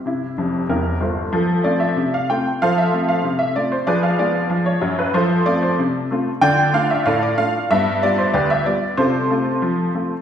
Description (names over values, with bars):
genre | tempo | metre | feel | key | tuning
ragtime piano | 94 BPM | 2/4 | straight | F major | A4 = 440 Hz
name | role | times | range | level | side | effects
honky-tonk upright piano | solo | 0.0-10.2 s | E1 to G5 | -16 LUFS | equal | none
room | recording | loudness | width
wet recital hall reverb, RT60 1.7 s | recorded in a church or concert hall | -16 LUFS | side -8 dB against mid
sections
0.0-1.3 A section; 1.3-10.2 A section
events
honky-tonk piano fill 0.4-1.3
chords
0.0 C; 1.3 F; 3.9 Fdim; 5.2 F; 6.4 Dm; 7.7 G7; 9.0 F/C